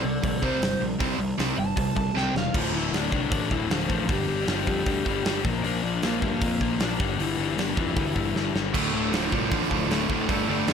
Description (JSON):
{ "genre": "punk rock", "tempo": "155 BPM", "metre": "4/4", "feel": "straight", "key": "D minor", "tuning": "A4 = 438 Hz", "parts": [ { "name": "lead guitar through a small cranked amp", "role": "melody", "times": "0.0-10.7 s", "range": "E3 to A5", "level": "-30 LUFS", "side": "equal", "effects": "overdrive" }, { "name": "crunchy overdriven guitar", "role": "riff", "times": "0.0-2.5, 8.7-10.7 s", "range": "D2 to C4", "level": "-28 LUFS", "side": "right 15 dB", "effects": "none" }, { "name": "overdriven electric guitar", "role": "riff", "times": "0.0-10.7 s", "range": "D2 to C4", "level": "-28 LUFS", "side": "left 11 dB", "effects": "none" }, { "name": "fuzz picked electric bass", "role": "bass", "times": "0.0-10.7 s", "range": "D1 to G2", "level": "-31 LUFS", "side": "equal", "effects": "overdrive" }, { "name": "big rock drum kit", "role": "drums", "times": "0.2-10.7 s", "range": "crash cymbal, hi-hat, kick drum, snare drum, splash cymbal", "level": "-28 LUFS", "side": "right 1 dB", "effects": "none" } ], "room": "light reverb", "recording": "none", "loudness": "-23 LUFS", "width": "side -7 dB against mid", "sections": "0.0-2.5 A section; 2.5-10.7 B section", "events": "lead electric guitar solo 0.0-2.5; drum fill 2.2-2.5, 8.3-8.7", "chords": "0.0 C5; 2.5 Dm; 4.1 G5; 5.4 Bb; 7.0 G5; 8.7 Dm" }